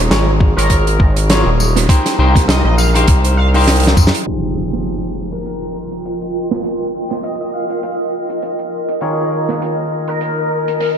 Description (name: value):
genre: glitch hop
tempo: 101 BPM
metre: 4/4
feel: swing 56% on 16ths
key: F minor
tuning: A4 = 441 Hz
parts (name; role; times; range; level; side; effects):
- gritty driven synth bass; bass; 0.0-4.1 s; Eb1 to F2; -13 LUFS; equal; none
- clean electric guitar; stabs; 0.1-11.0 s; Eb3 to Db5; -20 LUFS; left 1 dB; spring reverb, sidechain pumping, low-pass filter, analog delay
- big rock drum kit; drums; 0.1-11.0 s; hi-hat, snare drum, tambourine; -20 LUFS; right 2 dB; none
- electronic kick drum; drums; 0.4-4.1 s; none; -12 LUFS; equal; none
- sync lead; melody; 0.6-10.5 s; Bb4 to F5; -25 LUFS; left 1 dB; lush chorus, analog delay
- impact; sound effects; 4.3-6.6 s; none; -26 LUFS; equal; none
- granular cloud pad; texture; 5.3-11.0 s; F4 to Ab5; -20 LUFS; equal; built-in reverb, wide subtle chorus, sidechain pumping
room: moderate cathedral reverb, RT60 5.1 s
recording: dreamy mix soaked in reverb, low-pass filter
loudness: -13 LUFS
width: side -8 dB against mid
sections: 0.0-4.3 A section; 4.3-11.0 B section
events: drop 0.0-4.3; drum fill 3.7-4.3; impact 4.3-6.6; filter sweep on clean electric guitar 4.3-11.0; filter sweep 4.3-11.0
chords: 0.0 Eb9sus4; 1.9 Cm7; 4.3 Fm9; 9.0 Eb9sus4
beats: 0.11 0.71 1.30 | 1.90 2.49 3.08 3.68 | 4.27 4.87 5.46 6.05 | 6.65 7.24 7.84 8.43 | 9.02 9.62 10.21 10.81